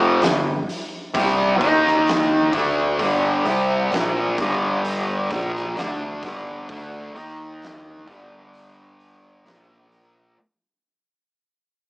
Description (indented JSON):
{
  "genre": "stoner and doom metal",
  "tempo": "65 BPM",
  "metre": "4/4",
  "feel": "straight",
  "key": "unclear",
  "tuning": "A4 = 440 Hz",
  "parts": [
    { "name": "fuzz guitar", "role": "riff", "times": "0.0-10.4 s", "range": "F2 to Eb4", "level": "-19 LUFS", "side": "equal", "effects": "distortion" },
    { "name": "overdriven fingered electric bass", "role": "bass", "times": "0.0-10.3 s", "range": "F1 to Eb2", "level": "-32 LUFS", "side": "equal", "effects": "none" },
    { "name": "oversized low-tuned drum kit", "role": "drums", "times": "0.2-10.1 s", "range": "hi-hat, kick drum, snare drum", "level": "-27 LUFS", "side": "equal", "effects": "none" }
  ],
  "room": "light reverb",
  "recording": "rough rehearsal-room recording, warm saturation, small speaker sound",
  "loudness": "-18 LUFS",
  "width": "side -28 dB against mid",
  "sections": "0.0-10.4 A section",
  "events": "fade-out 0.0-10.4",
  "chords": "0.2 G5; 1.6 Eb5; 2.5 G5; 7.1 Eb5; 8.1 G5; 9.5 Bb5",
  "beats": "0.22 1.14 2.07 | 2.99 3.92 4.84 5.76 | 6.68 7.61 8.53 9.45"
}